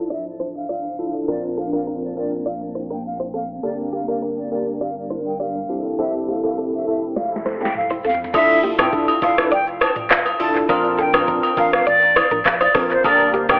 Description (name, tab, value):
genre	afrobeats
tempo	102 BPM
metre	4/4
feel	straight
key	D minor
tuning	A4 = 440 Hz
part	bell-like tine electric piano	accompaniment	0.0-13.6 s	Bb3 to Bb4	-23 LUFS	equal	ensemble chorus, tape echo
part	granular cloud pad	sustained chords	0.0-8.3 s	F3 to Bb4	-31 LUFS	equal	built-in reverb
part	warm sub bass	bass	0.0-13.6 s	D1 to Bb1	-40 LUFS	equal	none
part	silver concert flute	melody	0.1-13.6 s	C5 to A5	-21 LUFS	equal	tape echo
part	direct-recorded clean electric guitar	riff	0.1-13.6 s	Bb3 to D5	-25 LUFS	equal	wide subtle chorus, tape echo
part	afro-pop drum kit	drums	7.2-13.6 s	crash cymbal, handclaps, hi-hat, kick drum, rim click, shaker, snare drum, toms	-21 LUFS	equal	tape echo
part	agogo bells and woodblock	percussion	8.3-13.6 s	none	-22 LUFS	equal	tape echo
room	light reverb, digital ambience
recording	echo-heavy mix, cassette tape, low-pass filter, telephone sound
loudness	-17 LUFS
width	side -31 dB against mid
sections	0.0-8.3 A section; 8.3-13.6 B section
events	filter sweep 0.0-8.3; drum fill 7.2-8.3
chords	0.0 Dmadd9; 1.3 Bbadd9; 3.6 Gm; 5.7 Fmaj7; 8.3 Dmadd9; 10.7 Bbadd9; 13.0 Gm